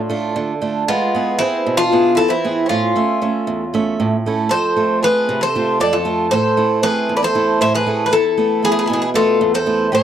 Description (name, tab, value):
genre	greek folk, Greek bouzouki band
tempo	232 BPM (eighths)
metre	7/8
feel	straight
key	unclear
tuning	A4 = 440 Hz
part	Greek bouzouki	melody	0.0-10.0 s	E4 to E5	-17 LUFS	left 2 dB	none
part	Greek bouzouki	second line	0.0-10.0 s	B3 to C5	-22 LUFS	equal	none
part	picked swing-style acoustic guitar	accompaniment	0.0-10.0 s	E2 to E5	-19 LUFS	right 4 dB	none
room	light reverb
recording	dry, close 1970s-style studio recording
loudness	-14 LUFS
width	side -10 dB against mid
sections	0.0-10.0 A section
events	none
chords	0.0 Dm; 0.9 E; 2.7 A; 4.5 F; 6.3 Am; 8.1 Esus4